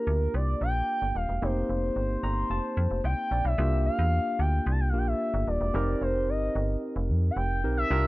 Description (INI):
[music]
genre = early-eighties boogie funk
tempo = 111 BPM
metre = 4/4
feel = straight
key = unclear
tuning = A4 = 440 Hz
[part]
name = expressive portamento lead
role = melody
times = 0.0-8.1 s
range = Bb4 to A5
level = -30 LUFS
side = equal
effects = chorus
[part]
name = barky tine electric piano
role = accompaniment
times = 0.0-8.1 s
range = Bb3 to Bb5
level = -32 LUFS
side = equal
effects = overdrive
[part]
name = metallic FM bass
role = bass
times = 0.1-8.1 s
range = Eb1 to F2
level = -27 LUFS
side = equal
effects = none
[sound]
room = digital ambience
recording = dry, close 1970s-style studio recording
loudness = -25 LUFS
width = side -19 dB against mid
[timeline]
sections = 0.0-3.6 A section; 3.6-8.1 B section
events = tine electric piano fill 2.0-3.6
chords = 0.0 C9sus4; 1.4 F9sus4; 3.6 C9sus4; 5.7 F9sus4